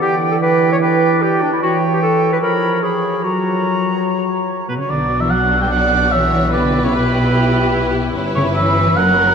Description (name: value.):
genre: classical.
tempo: 148 BPM.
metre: 4/4.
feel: straight.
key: B minor.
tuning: A4 = 440 Hz.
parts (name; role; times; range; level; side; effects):
clear clarinet; second line; 0.0-4.5 s; D4 to C#5; -20 LUFS; left 1 dB; none.
concert flute; second line; 0.0-4.7 s; G5 to B5; -24 LUFS; right 3 dB; none.
warm oboe; second line; 0.0-9.3 s; B4 to G5; -19 LUFS; right 1 dB; none.
mellow French horn section; sustained chords; 0.0-4.7 s; E3 to F#3; -20 LUFS; right 2 dB; stereo widening.
warm symphonic cello section; bass; 4.7-9.3 s; B2 to G3; -21 LUFS; right 1 dB; none.
warm symphonic violin section; melody; 4.9-9.3 s; F#4 to B4; -26 LUFS; equal; none.
rich symphonic viola section; accompaniment; 4.9-9.3 s; B3 to E4; -21 LUFS; left 1 dB; none.
warm symphonic double bass section; bass; 4.9-9.3 s; F#1 to B1; -21 LUFS; equal; none.
warm symphonic violin section; second line; 5.7-9.3 s; E4 to D5; -22 LUFS; equal; none.
room: wet cathedral reverb, RT60 5.8 s.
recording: in a vast, echoing space.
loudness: -13 LUFS.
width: side -6 dB against mid.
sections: 0.0-4.9 A section; 4.9-9.3 B section.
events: none.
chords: 0.0 Em7; 2.4 C#7/E#; 3.2 F#; 4.9 Bm; 6.5 Em/B; 8.2 C#m7b5/G.